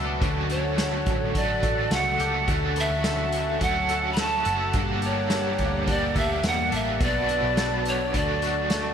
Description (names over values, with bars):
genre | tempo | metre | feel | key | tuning
dream pop | 106 BPM | 4/4 | straight | D major | A4 = 440 Hz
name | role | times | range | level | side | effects
raw garage guitar | accompaniment | 0.0-8.9 s | G2 to A4 | -31 LUFS | right 2 dB | overdrive, tremolo, ensemble chorus
warm analog pad | sustained chords | 0.0-8.9 s | Bb3 to A5 | -31 LUFS | right 2 dB | chorus
clean electric guitar | arpeggios | 0.0-8.9 s | G2 to A4 | -32 LUFS | left 4 dB | ensemble chorus, ping-pong delay
vintage muted picked electric bass | bass | 0.0-8.9 s | F#1 to E2 | -31 LUFS | equal | none
vintage drum kit | drums | 0.2-8.8 s | hi-hat, kick drum, snare drum, tambourine | -28 LUFS | equal | gated reverb
breathy pan flute | melody | 0.5-8.9 s | C#5 to B5 | -26 LUFS | equal | ping-pong delay
room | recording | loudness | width
moderate lush hall reverb, RT60 1.6 s, studio reverb | bright 1980s-style digital production | -22 LUFS | side -8 dB against mid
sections
0.0-8.9 A section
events
none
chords
0.2 Dmaj7; 4.7 Gmadd9; 7.0 Bm7; 8.1 D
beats
| 0.22 0.79 1.35 1.92 | 2.48 3.05 3.62 4.18 | 4.75 5.31 5.88 6.45 | 7.01 7.58 8.14 8.71